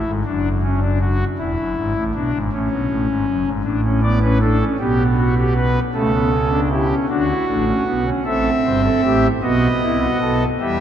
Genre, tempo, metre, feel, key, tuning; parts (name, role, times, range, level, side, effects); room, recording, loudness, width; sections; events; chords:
classical, baroque-style 4-part fugue for pipe organ; 52 BPM (dotted quarters); 6/8; straight; D major; A4 = 440 Hz
pipe organ, foundations; solo; 0.0-10.8 s; E1 to E5; -16 LUFS; equal
wet cathedral reverb, RT60 6.0 s; in a vast, echoing space; -16 LUFS; side -9 dB against mid
0.0-8.3 A section; 8.3-10.8 B section
0.3 D/F#; 1.4 E7; 2.5 A; 3.6 D5/A; 4.8 G/B; 5.9 A7/C#; 7.1 D; 8.3 Am7; 9.4 B7